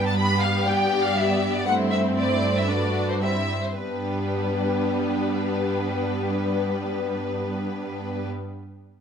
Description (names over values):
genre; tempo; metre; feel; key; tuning
quick classical-period movement for string orchestra; 109-123 BPM; 4/4; rubato; G major; A4 = 440 Hz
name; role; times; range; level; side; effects
clear symphonic violin section; melody; 0.0-8.3 s; B4 to B5; -27 LUFS; left 3 dB; none
warm symphonic violin section; second line; 0.0-8.3 s; D4 to D5; -28 LUFS; left 3 dB; none
rich symphonic viola section; accompaniment; 0.0-8.3 s; G3 to D4; -29 LUFS; right 3 dB; none
clear symphonic cello section; bass; 0.0-8.3 s; G2; -28 LUFS; right 2 dB; none
room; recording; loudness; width
moderate recital hall reverb, RT60 1.5 s; none; -22 LUFS; side -7 dB against mid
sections
0.0-3.8 A section; 3.8-8.0 B section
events
slowing down 0.0-3.8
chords
0.0 G; 1.7 C/G; 3.8 G